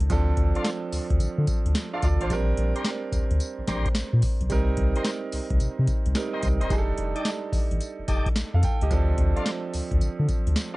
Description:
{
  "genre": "R&B, new jack swing",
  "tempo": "109 BPM",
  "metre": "4/4",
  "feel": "swing 66% on 16ths",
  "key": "unclear",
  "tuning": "A4 = 445 Hz",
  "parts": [
    { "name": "bright grand piano", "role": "accompaniment", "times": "0.0-10.8 s", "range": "F3 to G5", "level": "-30 LUFS", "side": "right 4 dB", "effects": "cassette tape" },
    { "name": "round analog bass", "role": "bass", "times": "0.0-10.5 s", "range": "E1 to D3", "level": "-24 LUFS", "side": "equal", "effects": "none" },
    { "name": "booming analog drum machine", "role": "drums", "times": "0.0-10.7 s", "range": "hi-hat, kick drum, snare drum, tambourine", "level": "-26 LUFS", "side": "equal", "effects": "overdrive, cassette tape" },
    { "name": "tonewheel organ", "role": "stabs", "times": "0.6-10.8 s", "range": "D4 to D5", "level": "-34 LUFS", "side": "left 1 dB", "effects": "fast rotary speaker, cassette tape, analog delay" }
  ],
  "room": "little or no reverb",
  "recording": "home recording on cassette, nothing above 10.3 kHz",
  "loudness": "-22 LUFS",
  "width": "side -20 dB against mid",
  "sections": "0.0-10.8 A section",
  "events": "none",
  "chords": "0.1 Dm7; 2.3 Bb69; 4.5 Cm7; 6.7 F13; 8.9 Dm7"
}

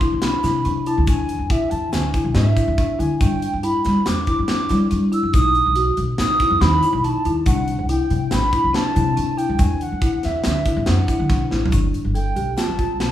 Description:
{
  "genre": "progressive instrumental, band music in an uneven meter",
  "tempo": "141 BPM",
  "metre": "5/4",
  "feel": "straight",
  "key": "G major",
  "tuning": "A4 = 440 Hz",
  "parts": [
    { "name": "baroque flute", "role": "melody", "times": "0.0-13.1 s", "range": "E5 to E6", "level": "-23 LUFS", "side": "right 2 dB", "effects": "none" },
    { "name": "folk marimba with medium mallets", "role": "arpeggios", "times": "0.0-13.1 s", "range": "D4 to A4", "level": "-24 LUFS", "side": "left 3 dB", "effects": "none" },
    { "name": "upright bass", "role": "bass", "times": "0.0-13.1 s", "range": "G1 to G3", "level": "-21 LUFS", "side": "equal", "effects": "none" },
    { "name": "tight metal drum kit", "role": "drums", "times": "0.0-13.1 s", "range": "hi-hat, kick drum, snare drum, toms", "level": "-23 LUFS", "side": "equal", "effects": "none" },
    { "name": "egg shaker", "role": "percussion", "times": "0.4-12.8 s", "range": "none", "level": "-43 LUFS", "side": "left 5 dB", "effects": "none" }
  ],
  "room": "moderate large studio reverb, RT60 1.3 s",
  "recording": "band playing live in one room, studio reverb",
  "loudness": "-17 LUFS",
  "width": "side -12 dB against mid",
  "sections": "0.0-11.7 A section; 11.7-13.1 B section",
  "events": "drum fill 11.5",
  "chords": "0.0 C; 1.1 E; 3.2 G; 5.3 B; 7.5 C; 9.6 E9; 10.4 D; 11.7 Gadd9"
}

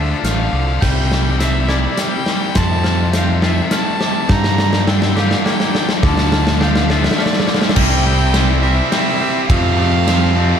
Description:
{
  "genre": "post-rock",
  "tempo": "104 BPM",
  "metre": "3/4",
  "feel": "straight",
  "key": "unclear",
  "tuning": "A4 = 439 Hz",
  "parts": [
    { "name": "rich violin", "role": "melody", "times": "0.0-10.6 s", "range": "D5 to Bb5", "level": "-23 LUFS", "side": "right 2 dB", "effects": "analog delay" },
    { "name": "soft additive organ-like pad", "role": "sustained chords", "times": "0.0-10.6 s", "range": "G3 to F5", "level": "-30 LUFS", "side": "left 1 dB", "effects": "none" },
    { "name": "glockenspiel with hard plastic mallets", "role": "arpeggios", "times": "0.0-7.8 s", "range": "C6 to G6", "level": "-30 LUFS", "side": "right 9 dB", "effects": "analog delay" },
    { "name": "twangy electric guitar", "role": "arpeggios", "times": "0.0-10.6 s", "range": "F2 to G4", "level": "-26 LUFS", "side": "left 4 dB", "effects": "none" },
    { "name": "tight distorted guitar", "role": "riff", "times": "0.0-10.6 s", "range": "F2 to E4", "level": "-22 LUFS", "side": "left 12 dB", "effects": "distortion" },
    { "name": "fuzz fingered electric bass", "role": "bass", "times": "0.0-10.5 s", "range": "A1 to G2", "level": "-17 LUFS", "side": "equal", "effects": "overdrive" },
    { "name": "big rock drum kit", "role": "drums", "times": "0.2-10.2 s", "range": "crash cymbal, hi-hat, kick drum, ride cymbal, snare drum", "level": "-17 LUFS", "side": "equal", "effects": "none" },
    { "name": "tight distorted guitar", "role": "riff", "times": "7.8-10.6 s", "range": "F2 to C4", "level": "-21 LUFS", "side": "right 16 dB", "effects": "distortion" }
  ],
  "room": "studio reverb",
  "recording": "none",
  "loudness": "-13 LUFS",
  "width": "side -8 dB against mid",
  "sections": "0.0-7.8 A section; 7.8-10.6 B section",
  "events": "build-up 0.0-7.8; drum fill 0.0-7.8",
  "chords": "0.0 Dm; 0.8 C; 2.6 F; 4.3 Gm7; 6.0 Dm; 7.8 C; 9.5 F"
}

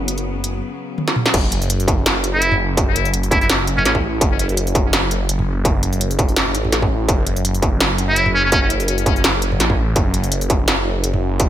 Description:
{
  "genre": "half-time drum and bass",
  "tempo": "167 BPM",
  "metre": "4/4",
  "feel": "swing 54% on 16ths, half-time",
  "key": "F# minor",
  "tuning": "A4 = 439 Hz",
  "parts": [
    { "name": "clear chamber cello section", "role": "sustained chords", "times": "0.0-1.3 s", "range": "C#3 to B3", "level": "-28 LUFS", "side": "left 3 dB", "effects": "sidechain pumping" },
    { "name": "phased detuned saw bass", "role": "bass", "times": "0.0-11.5 s", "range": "F#1 to A1", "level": "-20 LUFS", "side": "equal", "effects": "phaser" },
    { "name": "industrial drum kit", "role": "drums", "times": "0.1-11.5 s", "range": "crash cymbal, hi-hat, snare drum, toms", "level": "-19 LUFS", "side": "equal", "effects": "none" },
    { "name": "electronic kick drum", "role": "drums", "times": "1.3-11.5 s", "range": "none", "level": "-18 LUFS", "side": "equal", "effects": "distortion" },
    { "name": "trumpet with metal mute", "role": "melody", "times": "2.3-3.9, 8.1-8.7 s", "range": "C#4 to E4", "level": "-20 LUFS", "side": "equal", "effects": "ping-pong delay" }
  ],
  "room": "light reverb",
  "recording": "none",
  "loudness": "-15 LUFS",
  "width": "side -11 dB against mid",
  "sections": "0.0-1.3 A section; 1.3-11.5 B section",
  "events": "filter sweep on drum 0.0-1.3; drum fill 1.0-1.3; drop 1.3-11.5",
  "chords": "0.0 F#5"
}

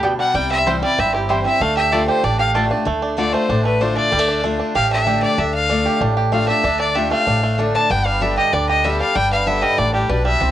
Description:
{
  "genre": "bluegrass",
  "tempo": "191 BPM",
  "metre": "4/4",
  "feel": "straight",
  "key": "D dorian",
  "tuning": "A4 = 440 Hz",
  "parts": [
    { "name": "picked steel-string acoustic guitar", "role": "accompaniment", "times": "0.0-10.5 s", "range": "G2 to G4", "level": "-23 LUFS", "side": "left 5 dB", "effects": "cassette tape" },
    { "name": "bluegrass banjo", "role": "arpeggios", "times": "0.0-10.5 s", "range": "D3 to G4", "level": "-20 LUFS", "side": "right 5 dB", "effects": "cassette tape" },
    { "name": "mandolin", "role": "stabs", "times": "0.0-2.6 s", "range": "A3 to A5", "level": "-21 LUFS", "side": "right 2 dB", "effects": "cassette tape" },
    { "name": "upright bass", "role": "bass", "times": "0.0-10.5 s", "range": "G1 to D2", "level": "-23 LUFS", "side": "equal", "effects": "none" },
    { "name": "clear fiddle", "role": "melody", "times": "0.2-10.5 s", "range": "G4 to A5", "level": "-19 LUFS", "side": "left 2 dB", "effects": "none" }
  ],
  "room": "light reverb",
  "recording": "home recording on cassette",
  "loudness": "-15 LUFS",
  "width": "side -12 dB against mid",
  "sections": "0.0-2.9 A section; 2.9-10.5 B section",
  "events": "fiddle solo 2.9-10.5",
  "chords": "0.3 C; 1.6 Dm; 7.9 G"
}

